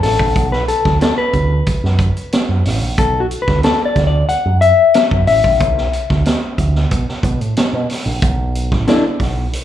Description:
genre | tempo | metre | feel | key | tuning
funk | 92 BPM | 4/4 | straight | B minor | A4 = 440 Hz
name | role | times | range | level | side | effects
mellow electric guitar | accompaniment | 0.0-9.0 s | D4 to F#5 | -15 LUFS | left 5 dB | slapback echo
picked electric bass with an envelope filter | bass | 0.0-9.6 s | A1 to B2 | -16 LUFS | right 1 dB | none
vintage drum kit | drums | 0.0-9.6 s | hi-hat, kick drum, snare drum | -18 LUFS | right 1 dB | none
room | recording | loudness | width
light reverb, studio reverb | live gig heard through the venue's PA, club reverb | -13 LUFS | side -11 dB against mid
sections
0.0-8.2 A section; 8.2-9.6 B section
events
clean electric guitar solo 0.0-8.2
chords
0.0 Bm7

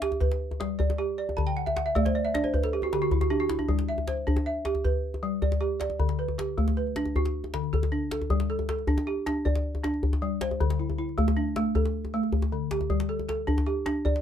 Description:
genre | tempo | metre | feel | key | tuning
west african traditional, West African string and xylophone music | 104 BPM (dotted quarters) | 12/8 | straight | G major | A4 = 440 Hz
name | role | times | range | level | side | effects
balafon | arpeggios | 0.0-14.2 s | D3 to A5 | -28 LUFS | right 1 dB | none
djembe | percussion | 0.0-14.2 s | none | -28 LUFS | left 1 dB | none
room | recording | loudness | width
wet small room ambience, RT60 0.5 s | band playing live in one room | -25 LUFS | side -9 dB against mid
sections
0.0-8.3 A section; 8.3-14.2 B section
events
balafon fill 1.4-3.7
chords
0.0 G; 1.4 D5; 3.7 G; 6.0 D; 8.3 G5; 10.6 D5; 12.9 G5

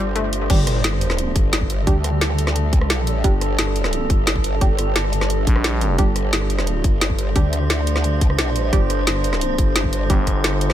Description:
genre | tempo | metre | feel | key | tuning
dark technical drum and bass | 175 BPM | 4/4 | straight | unclear | A4 = 438 Hz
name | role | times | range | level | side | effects
metallic inharmonic drone | sustained chords | 0.0-10.7 s | G3 to C5 | -25 LUFS | right 2 dB | chorus, built-in reverb, sidechain pumping
growl bass | bass | 0.0-10.1 s | G1 to D2 | -21 LUFS | equal | chorus, tube saturation
drum and bass drum kit | drums | 0.2-10.7 s | crash cymbal, hi-hat, rim click, snare drum | -23 LUFS | equal | none
filtered dub chord stab | stabs | 0.5-10.2 s | G3 to G4 | -27 LUFS | right 4 dB | chorus, digital delay
electronic kick drum | drums | 0.5-10.3 s | none | -18 LUFS | equal | none
sub drop | sound effects | 0.5-1.9 s | none | -27 LUFS | left 1 dB | none
growling FM bass | bass | 5.5-6.0, 10.1-10.7 s | G1 to Bb1 | -20 LUFS | equal | none
room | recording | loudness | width
little or no reverb | none | -17 LUFS | side -11 dB against mid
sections
0.5-10.7 A section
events
drop 0.5-10.7; impact 0.5-1.9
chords
0.5 G5

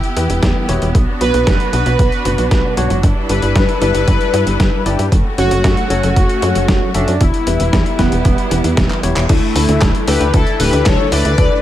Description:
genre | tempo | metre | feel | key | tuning
italo disco | 115 BPM | 4/4 | straight | unclear | A4 = 440 Hz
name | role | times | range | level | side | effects
clear studio string section | sustained chords | 0.0-11.6 s | E3 to B4 | -23 LUFS | right 1 dB | none
dusty soul sampler-style drum kit | drums | 0.0-11.5 s | crash cymbal, handclaps, hi-hat, snare drum | -21 LUFS | equal | overdrive, gated reverb
bright tine electric piano | stabs | 0.2-11.3 s | G2 to E5 | -21 LUFS | left 3 dB | none
tight sequencer bass | bass | 0.2-11.5 s | D1 to G2 | -17 LUFS | equal | tube saturation
electronic kick drum | drums | 0.4-11.5 s | none | -15 LUFS | equal | overdrive
analog synth brass | melody | 1.2-11.6 s | A3 to D5 | -18 LUFS | left 1 dB | chorus, ping-pong delay
room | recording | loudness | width
little or no reverb | none | -12 LUFS | side -12 dB against mid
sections
0.0-9.3 A section; 9.3-11.6 B section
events
drum fill 8.9-9.3; band accent 9.2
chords
0.0 Em; 0.9 Bm; 3.0 G6; 5.1 F#m; 7.2 Em; 9.3 Dsus2

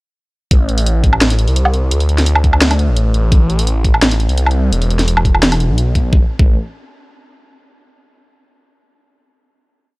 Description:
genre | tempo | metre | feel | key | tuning
half-time drum and bass | 171 BPM | 4/4 | half-time | A minor | A4 = 440 Hz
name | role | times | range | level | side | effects
phased detuned saw bass | bass | 0.5-6.6 s | E1 to D2 | -14 LUFS | equal | phaser
drum and bass drum kit | drums | 0.5-6.0 s | hi-hat, snare drum, woodblock | -16 LUFS | equal | none
electronic kick drum | drums | 0.5-6.5 s | none | -12 LUFS | equal | none
room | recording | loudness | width
digital ambience | dry, gritty hardware recording, transformer saturation | -11 LUFS | side -23 dB against mid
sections
0.5-6.1 drop; 6.1-7.5 final note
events
drop 0.5-6.1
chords
none

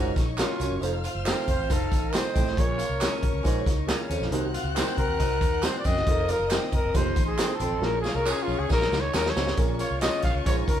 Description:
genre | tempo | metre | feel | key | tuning
uptempo 1960s-style soul | 137 BPM | 4/4 | straight | Bb minor | A4 = 441 Hz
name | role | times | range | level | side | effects
growling trumpet | melody | 0.0-10.8 s | F4 to F5 | -28 LUFS | left 1 dB | none
mellow saxophone section | second line | 0.0-10.8 s | Db3 to Db5 | -36 LUFS | right 1 dB | none
warm studio string section | second line | 0.0-10.8 s | C5 to Gb6 | -38 LUFS | equal | none
warm grand piano | accompaniment | 0.0-10.7 s | Bb2 to Db5 | -35 LUFS | left 1 dB | none
breathy baritone saxophone | riff | 0.0-10.6 s | Eb2 to Bb2 | -32 LUFS | right 5 dB | none
electric guitar through a small old amp | riff | 0.0-10.8 s | C4 to F4 | -35 LUFS | left 4 dB | none
vintage muted fingered electric bass | bass | 0.0-10.8 s | F1 to F2 | -31 LUFS | equal | none
vintage drum kit | drums | 0.2-10.8 s | hi-hat, kick drum, snare drum | -26 LUFS | equal | none
tambourine and handclaps | percussion | 0.2-10.8 s | none | -36 LUFS | right 4 dB | none
room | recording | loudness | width
moderate studio ambience, RT60 0.5 s | band playing live in one room | -23 LUFS | side -10 dB against mid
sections
0.0-9.6 A section; 9.6-10.8 B section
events
trumpet solo 0.0-9.6; drum fill 7.8-9.6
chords
0.0 Gbmaj7; 0.8 F7; 2.6 Bbm7; 4.3 Cm7b5; 6.1 F7sus4; 6.9 F7; 7.8 Bbm7

